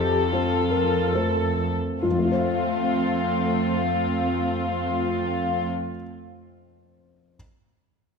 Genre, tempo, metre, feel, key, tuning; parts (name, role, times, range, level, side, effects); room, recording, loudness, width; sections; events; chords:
cinematic; 68 BPM; 3/4; rubato; F major; A4 = 443 Hz
warm studio violin section; melody; 0.0-5.7 s; F4 to A4; -26 LUFS; left 4 dB
warm concert grand piano; accompaniment; 0.0-7.4 s; F2 to F5; -26 LUFS; left 3 dB
warm studio viola section; accompaniment; 0.0-5.7 s; A3 to A4; -28 LUFS; right 2 dB
warm studio cello section; bass; 0.0-5.7 s; F2; -30 LUFS; right 5 dB
moderate scoring stage reverb, RT60 1.9 s; -21 LUFS; side -5 dB against mid
0.0-2.0 A section; 2.0-7.3 B section
slowing down 0.0-2.0
0.0 F